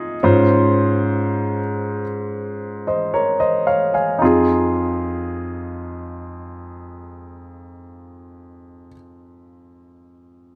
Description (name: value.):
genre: pop.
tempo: 54-67 BPM.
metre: 4/4.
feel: straight.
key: F minor.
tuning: A4 = 440 Hz.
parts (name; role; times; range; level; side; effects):
clear baby grand piano; accompaniment; 0.0-10.6 s; F2 to Ab5; -20 LUFS; equal; none.
room: moderate plate reverb, RT60 2.7 s.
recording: none.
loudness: -19 LUFS.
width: mono.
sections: 0.0-4.2 A section; 4.2-8.7 B section.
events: slowing down 0.0-4.2.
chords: 0.2 Dbmaj7; 4.2 Fm7.